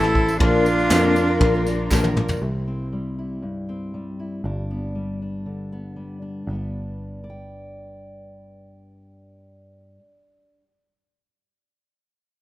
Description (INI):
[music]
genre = indie folk with a building arrangement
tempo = 118 BPM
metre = 4/4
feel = straight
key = G major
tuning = A4 = 438 Hz
[part]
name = bright cello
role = melody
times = 0.0-1.9 s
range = D4 to E4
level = -23 LUFS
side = equal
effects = none
[part]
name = warm trumpet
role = second line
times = 0.0-1.9 s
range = F4 to A4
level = -23 LUFS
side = right 3 dB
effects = none
[part]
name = picked twelve-string acoustic guitar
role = accompaniment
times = 0.0-2.4 s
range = Bb2 to Bb4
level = -24 LUFS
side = left 4 dB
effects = wide subtle chorus
[part]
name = hand-pumped harmonium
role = sustained chords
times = 0.0-2.4 s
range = E4 to Bb5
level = -34 LUFS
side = right 2 dB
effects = none
[part]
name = picked electric bass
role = bass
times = 0.0-9.8 s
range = G1 to F2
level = -26 LUFS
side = equal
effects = none
[part]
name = vintage brush drum kit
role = drums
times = 0.0-2.4 s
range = kick drum, ride cymbal, snare drum, toms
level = -23 LUFS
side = equal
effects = none
[part]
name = tambourine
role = percussion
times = 0.3-2.4 s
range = none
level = -39 LUFS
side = right 3 dB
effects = none
[part]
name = group handclap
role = percussion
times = 0.9-2.0 s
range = none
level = -31 LUFS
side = right 1 dB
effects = none
[part]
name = fingerpicked steel-string acoustic guitar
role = accompaniment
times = 2.4-10.7 s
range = G2 to G5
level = -33 LUFS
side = left 1 dB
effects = none
[sound]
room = light reverb, small room reverb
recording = rough home demo mix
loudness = -20 LUFS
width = side -16 dB against mid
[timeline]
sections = 0.0-2.4 A section; 2.4-6.5 B section; 6.5-10.5 C section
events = drum fill 1.9-2.4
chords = 0.4 Bb; 2.4 C; 4.4 G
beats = | 0.41 0.91 1.41 1.91 | 2.42 2.92 3.43 3.93 | 4.44 4.95 5.46 5.96 | 6.47 6.98 7.49 8.00 | 8.51 9.02 9.53 10.04